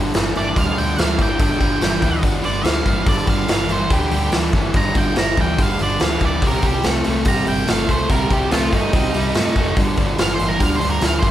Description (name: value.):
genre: blues rock power trio and southern rock.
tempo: 143 BPM.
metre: 4/4.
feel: straight.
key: G minor.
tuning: A4 = 440 Hz.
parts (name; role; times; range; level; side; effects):
overdriven electric guitar; riff; 0.0-11.3 s; G2 to A3; -21 LUFS; equal; none.
vintage muted fingered electric bass; bass; 0.0-11.3 s; F1 to G2; -24 LUFS; equal; none.
raw garage drum kit; drums; 0.1-11.3 s; hi-hat, kick drum, snare drum; -19 LUFS; equal; none.
octave-fuzz lead guitar; melody; 0.4-11.3 s; Eb4 to Bb5; -23 LUFS; right 2 dB; distortion.
room: light reverb.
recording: band playing live in one room.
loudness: -16 LUFS.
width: side -12 dB against mid.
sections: 0.0-11.3 A section.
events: none.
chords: 0.0 G5; 6.4 Cm; 9.8 G5.